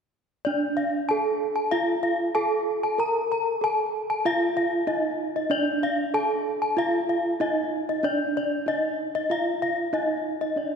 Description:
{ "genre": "gamelan", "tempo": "95 BPM", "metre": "4/4", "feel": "straight", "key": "D pelog", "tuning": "A4 = 439 Hz", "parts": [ { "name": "gamelan-type bronze metallophone", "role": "arpeggios", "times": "0.4-10.7 s", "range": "D5 to Bb5-20c", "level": "-26 LUFS", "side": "left 3 dB", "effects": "none" }, { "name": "gamelan-type bronze metallophone", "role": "melody", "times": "0.5-10.8 s", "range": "D4 to Bb4-20c", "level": "-26 LUFS", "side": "right 3 dB", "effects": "tape echo" } ], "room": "wet concert hall reverb, RT60 2.3 s", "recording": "heard from further back in the room", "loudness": "-23 LUFS", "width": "side -6 dB against mid", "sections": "0.5-10.8 A section", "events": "none", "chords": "none" }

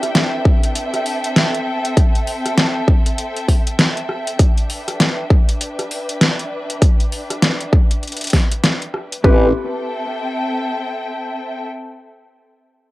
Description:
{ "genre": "glitch hop", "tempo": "99 BPM", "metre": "4/4", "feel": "swing 60% on 16ths", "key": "A minor", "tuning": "A4 = 439 Hz", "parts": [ { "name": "dubstep drum kit", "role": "drums", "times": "0.0-9.2 s", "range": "hi-hat, rim click, snare drum", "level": "-17 LUFS", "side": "equal", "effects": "overdrive" }, { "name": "dark studio string section", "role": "texture", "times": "0.0-11.6 s", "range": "C4 to G5", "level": "-24 LUFS", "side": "equal", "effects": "sidechain pumping, cassette tape" }, { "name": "electronic kick drum", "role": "drums", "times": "0.5-9.4 s", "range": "none", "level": "-13 LUFS", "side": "equal", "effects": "overdrive" }, { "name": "mellow electric guitar", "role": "stabs", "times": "9.2-9.5 s", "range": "C4 to B4", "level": "-21 LUFS", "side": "equal", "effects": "sidechain pumping, cassette tape, analog delay" }, { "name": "formant-sweep wobble bass", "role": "bass", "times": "9.2-9.5 s", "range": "A1", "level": "-17 LUFS", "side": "equal", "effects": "chorus, tube saturation" } ], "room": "light reverb", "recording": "home recording on cassette", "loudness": "-15 LUFS", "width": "side -18 dB against mid", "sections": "0.0-9.2 A section; 9.2-11.7 B section", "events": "fade-out on string section 0.0-9.2", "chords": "0.0 Am7; 4.4 Em7; 9.2 Am7" }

